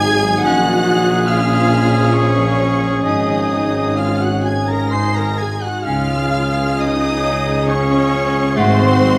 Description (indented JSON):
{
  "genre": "classical, slow romantic movement for symphony orchestra",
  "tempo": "63-72 BPM",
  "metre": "3/4",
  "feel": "rubato",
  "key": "Db major",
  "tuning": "A4 = 438 Hz",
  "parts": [
    { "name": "rich studio violin section", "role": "melody", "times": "0.0-9.2 s", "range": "C6 to C7", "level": "-27 LUFS", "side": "equal", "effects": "none" },
    { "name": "warm oboe", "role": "second line", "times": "0.0-9.2 s", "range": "C5 to C6", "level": "-27 LUFS", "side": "equal", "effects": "none" },
    { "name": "warm studio violin section", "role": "second line", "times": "0.0-9.2 s", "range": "C5 to C6", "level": "-28 LUFS", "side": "equal", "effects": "none" },
    { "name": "rich studio viola section", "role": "accompaniment", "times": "0.0-9.2 s", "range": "C4 to C5", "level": "-25 LUFS", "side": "equal", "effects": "none" },
    { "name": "dark French horn section", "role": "sustained chords", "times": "0.0-9.2 s", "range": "F3 to Eb4", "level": "-24 LUFS", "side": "equal", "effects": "none" },
    { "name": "concert harp", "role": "arpeggios", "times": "0.0-9.2 s", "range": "Ab2 to Db5", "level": "-27 LUFS", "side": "equal", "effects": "none" },
    { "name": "bright trumpet", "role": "stabs", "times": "0.0-9.2 s", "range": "Gb4 to Ab4", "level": "-26 LUFS", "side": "equal", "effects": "none" },
    { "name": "rich studio cello section", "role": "bass", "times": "0.0-9.2 s", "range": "Ab2 to Db3", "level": "-26 LUFS", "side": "equal", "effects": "none" },
    { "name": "rich studio double bass section", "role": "bass", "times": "0.0-9.2 s", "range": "Ab1 to Db2", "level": "-26 LUFS", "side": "equal", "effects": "none" },
    { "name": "warm tuba", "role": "bass", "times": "0.0-9.2 s", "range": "Ab1 to Db2", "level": "-28 LUFS", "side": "equal", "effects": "none" },
    { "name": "mellow hollow concert flute", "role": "second line", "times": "0.4-9.0 s", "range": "Gb5 to Ab5", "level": "-27 LUFS", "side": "equal", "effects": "none" },
    { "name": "bright clarinet", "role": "second line", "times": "0.5-8.9 s", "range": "A3 to Eb4", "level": "-26 LUFS", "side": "equal", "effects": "none" }
  ],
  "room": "moderate scoring stage reverb, RT60 1.6 s",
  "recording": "none",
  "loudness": "-16 LUFS",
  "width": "mono",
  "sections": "0.0-9.2 A section",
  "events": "none",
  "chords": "0.4 Bbm7; 3.0 Absus4; 4.9 Ab5; 5.9 Db; 8.6 Ab7b9"
}